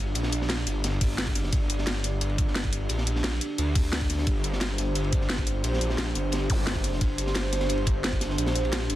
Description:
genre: dark technical drum and bass.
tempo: 175 BPM.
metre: 4/4.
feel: straight.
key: G minor.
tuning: A4 = 440 Hz.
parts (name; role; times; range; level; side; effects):
dark analog pad; sustained chords; 0.0-9.0 s; D4 to D5; -32 LUFS; right 1 dB; chorus, phaser, sidechain pumping.
wide detuned saw bass; bass; 0.0-9.0 s; G1 to D2; -28 LUFS; equal; chorus, tube saturation.
crunchy breakbeat drum kit; drums; 0.1-9.0 s; hi-hat, ride cymbal, snare drum; -36 LUFS; equal; high-pass filter on cymbals, high-pass filter on hats, high-pass filter on snare, high-pass filter on room.
drum and bass drum kit; drums; 0.2-9.0 s; hi-hat, snare drum; -30 LUFS; left 1 dB; none.
electronic kick drum; drums; 1.0-8.2 s; none; -26 LUFS; equal; none.
zap; sound effects; 6.5-6.6 s; none; -39 LUFS; equal; none.
room: little or no reverb.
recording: dense, heavily limited modern master.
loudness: -24 LUFS.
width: side -14 dB against mid.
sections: 0.0-9.0 A section.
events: none.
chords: 0.0 G5.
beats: | 0.15 0.50 0.84 1.18 | 1.53 1.87 2.21 2.56 | 2.90 3.24 3.58 3.93 | 4.27 4.61 4.96 5.30 | 5.64 5.98 6.33 6.67 | 7.01 7.36 7.70 8.04 | 8.38 8.73.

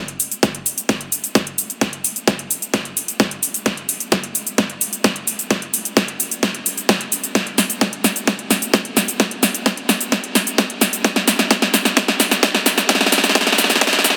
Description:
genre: EDM, festival progressive house.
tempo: 130 BPM.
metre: 4/4.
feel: straight.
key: none.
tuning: none.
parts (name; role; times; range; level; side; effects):
big-room dance drum kit; drums; 0.1-14.2 s; hi-hat, shaker, snare drum; -19 LUFS; equal; small room reverb.
electronic kick drum; drums; 0.4-13.9 s; none; -20 LUFS; equal; high-pass filter on kick, small room reverb.
room: moderate huge ambient reverb, RT60 4.1 s.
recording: dense, heavily limited modern master, high-pass filter.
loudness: -18 LUFS.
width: mono.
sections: 0.0-14.2 A section.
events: build-up 0.0-14.2; drum fill 0.0-14.2.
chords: none.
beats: 0.43 0.89 1.35 | 1.81 2.27 2.74 3.20 | 3.66 4.12 4.58 5.04 | 5.51 5.97 6.43 6.89 | 7.35 7.81 8.28 8.74 | 9.20 9.66 10.12 10.58 | 11.04 11.51 11.97 12.43 | 12.89 13.35 13.81.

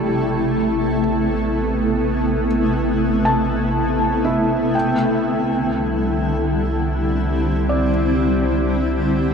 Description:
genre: ambient.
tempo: 61 BPM.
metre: 3/4.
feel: straight.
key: unclear.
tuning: A4 = 440 Hz.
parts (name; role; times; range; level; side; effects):
granular cloud pad; sustained chords; 0.0-9.3 s; C3 to A4; -18 LUFS; equal; built-in reverb.
felt-muted upright piano; arpeggios; 0.0-9.3 s; G3 to A5; -26 LUFS; equal; diffuse ambient delay.
deep rumbling drone; bass; 0.0-9.3 s; A1 to C2; -25 LUFS; equal; built-in reverb.
room: wet huge ambient reverb, RT60 7.7 s.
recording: dark, warm production.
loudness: -17 LUFS.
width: side -6 dB against mid.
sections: 0.0-9.3 A section.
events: fade-in on synth drone 0.0-9.3; fade-out on felt piano 0.0-9.3.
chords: 0.0 Amadd9; 4.7 Cadd9.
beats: 0.80 | 1.77 2.76 3.74 | 4.74 5.73 6.71 | 7.69 8.67.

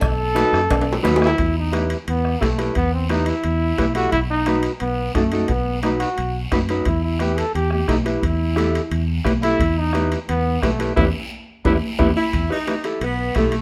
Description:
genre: latin, cumbia.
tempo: 175 BPM.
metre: 4/4.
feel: straight.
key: E harmonic minor.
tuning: A4 = 438 Hz.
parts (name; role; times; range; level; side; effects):
bright trombone; second line; 0.0-12.1 s; A3 to A4; -25 LUFS; equal; none.
fingered electric bass; bass; 0.0-13.6 s; B1 to F#2; -26 LUFS; equal; none.
bombo; percussion; 0.0-13.5 s; none; -26 LUFS; equal; none.
congas; percussion; 0.0-13.5 s; none; -30 LUFS; equal; none.
cowbell and timbales; percussion; 0.0-13.6 s; none; -31 LUFS; equal; none.
guiro; percussion; 0.0-13.6 s; none; -38 LUFS; equal; none.
mellow electric guitar; accompaniment; 0.3-13.5 s; D#4 to B4; -26 LUFS; equal; none.
warm saxophone section; melody; 12.2-13.6 s; A3 to E4; -25 LUFS; equal; none.
room: light reverb.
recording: none.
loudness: -20 LUFS.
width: mono.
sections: 0.0-1.4 A section; 1.4-12.3 B section; 12.3-13.6 C section.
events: trombone solo 0.0-1.4, 1.4-12.3; drum fill 0.7-1.4; band accent 11.0-12.3; clean electric guitar fill 11.7-12.3.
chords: 0.0 B7; 1.4 Em; 4.1 B; 6.9 Em.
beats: | 0.01 0.36 0.70 1.04 | 1.38 1.73 2.07 2.41 | 2.75 3.10 3.44 3.78 | 4.12 4.47 4.81 5.15 | 5.49 5.84 6.18 6.52 | 6.86 7.21 7.55 7.89 | 8.23 8.57 8.92 9.26 | 9.60 9.94 10.29 10.63 | 10.97 11.31 11.65 12.00 | 12.34 12.68 13.02 13.37.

